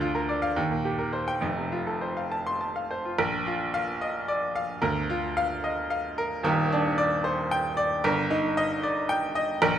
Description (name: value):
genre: classical, virtuoso piano study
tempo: 67-76 BPM (dotted quarters)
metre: 6/8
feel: rubato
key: Bb major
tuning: A4 = 440 Hz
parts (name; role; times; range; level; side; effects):
- bright baby grand piano; solo; 0.0-9.8 s; Eb1 to C6; -24 LUFS; equal; none
room: moderate recital hall reverb, RT60 1.7 s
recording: none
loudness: -25 LUFS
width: side -10 dB against mid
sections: 0.0-3.2 A section; 3.2-9.8 B section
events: none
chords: 0.0 Bb/D; 0.6 Cm7/Eb; 1.4 F; 3.2 Bb; 4.8 Bb/D; 6.4 Ebmaj7; 8.0 Eb/G